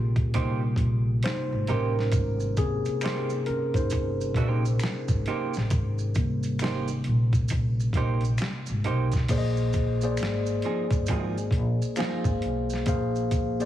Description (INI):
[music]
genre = R&B, neo-soul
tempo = 67 BPM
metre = 4/4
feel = swing 64% on 16ths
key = Ab major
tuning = A4 = 440 Hz
[part]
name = mellow tine electric piano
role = accompaniment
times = 0.0-13.7 s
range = C3 to F5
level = -29 LUFS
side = left 2 dB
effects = none
[part]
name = upright bass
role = bass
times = 0.0-13.7 s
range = G1 to Cb2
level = -27 LUFS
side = equal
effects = none
[part]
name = boom bap sampler-style drum kit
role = drums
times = 0.2-13.7 s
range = crash cymbal, hi-hat, kick drum, snare drum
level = -28 LUFS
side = equal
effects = none
[part]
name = archtop guitar, miked and amplified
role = second line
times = 0.3-12.3 s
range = F3 to C5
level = -34 LUFS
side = right 8 dB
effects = none
[part]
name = maracas and finger snaps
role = percussion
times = 2.1-13.7 s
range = none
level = -42 LUFS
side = right 1 dB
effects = none
[sound]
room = light reverb, small room ambience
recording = heavily compressed radio sound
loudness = -24 LUFS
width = side -12 dB against mid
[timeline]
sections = 0.0-9.3 A section; 9.3-13.7 B section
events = tine electric piano solo 0.0-9.3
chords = 0.0 Abmaj9; 9.3 Bb9sus4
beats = 0.33 1.23 | 2.12 3.02 3.91 4.81 | 5.70 6.60 7.49 8.39 | 9.29 10.18 11.08 11.97 | 12.87